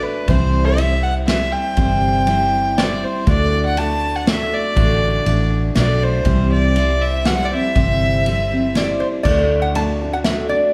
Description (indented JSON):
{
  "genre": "honky-tonk and classic country",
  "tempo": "120 BPM",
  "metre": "3/4",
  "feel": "straight",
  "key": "D mixolydian",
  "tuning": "A4 = 440 Hz",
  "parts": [
    { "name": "rich fiddle", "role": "second line", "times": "0.0-8.8 s", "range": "B4 to A5", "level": "-23 LUFS", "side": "equal", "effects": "none" },
    { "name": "picked steel-string acoustic guitar", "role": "accompaniment", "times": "0.0-10.7 s", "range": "C3 to D5", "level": "-24 LUFS", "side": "equal", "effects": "none" },
    { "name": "vintage muted fingered electric bass", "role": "bass", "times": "0.0-10.5 s", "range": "G1 to D2", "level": "-22 LUFS", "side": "equal", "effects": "none" },
    { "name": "unplugged drum kit", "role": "drums", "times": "0.3-10.4 s", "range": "crash cymbal, kick drum, ride cymbal, snare drum", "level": "-25 LUFS", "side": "equal", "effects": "none" },
    { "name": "lap resonator guitar", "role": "melody", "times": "8.8-10.7 s", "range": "C5 to A5", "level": "-21 LUFS", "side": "equal", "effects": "none" }
  ],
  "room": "wet large studio reverb, RT60 1.1 s",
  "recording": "heard from further back in the room",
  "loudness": "-17 LUFS",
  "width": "mono",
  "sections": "0.0-9.3 A section; 9.3-10.7 A section",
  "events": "fiddle solo 0.0-9.3",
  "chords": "0.3 C; 3.3 D; 6.3 C; 9.3 D"
}